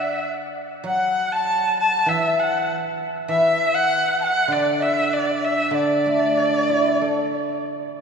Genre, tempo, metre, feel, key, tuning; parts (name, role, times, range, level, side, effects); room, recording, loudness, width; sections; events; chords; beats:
chinese traditional, Chinese chamber ensemble; 98 BPM; 4/4; rubato; D gong mode; A4 = 438 Hz
rich erhu; melody; 0.0-7.6 s; D5 to A5; -23 LUFS; right 1 dB
bright large dizi; second line; 0.0-7.6 s; D5 to A5; -23 LUFS; left 1 dB
guzheng; accompaniment; 0.0-8.0 s; D3 to A4; -24 LUFS; right 1 dB
wet cathedral reverb, RT60 4.6 s; recorded in a church or concert hall; -18 LUFS; side -6 dB against mid
0.0-8.0 A section
0.26 | 0.87 1.48 2.09 2.70 | 3.30 3.91 4.51 5.13 | 5.74 6.36 6.99 7.64